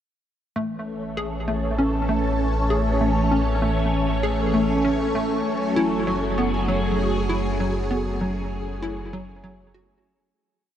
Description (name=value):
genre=ambient, sequencer-driven space music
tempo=98 BPM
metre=4/4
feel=straight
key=A major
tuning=A4 = 442 Hz
part: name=phased string machine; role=sustained chords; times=0.6-10.4 s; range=E3 to C#5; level=-24 LUFS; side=equal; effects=ensemble chorus, phaser, shimmer reverb
part: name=hollow square pluck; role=riff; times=0.6-9.9 s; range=F#3 to G#4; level=-26 LUFS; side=left 1 dB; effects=wide subtle chorus, analog delay, shimmer reverb
part: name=round analog bass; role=bass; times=0.6-10.3 s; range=F#1 to A1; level=-27 LUFS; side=equal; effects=none
part: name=pulsing gated texture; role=texture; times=1.6-10.4 s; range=G#5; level=-38 LUFS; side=left 1 dB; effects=chorus, built-in reverb, shimmer reverb
room=wet huge ambient reverb, RT60 7.8 s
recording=dark, warm production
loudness=-21 LUFS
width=side -10 dB against mid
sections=0.6-10.4 A section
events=fade-in on synth texture 0.6-10.4; fade-out 7.1-10.4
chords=0.6 A; 5.5 F#madd9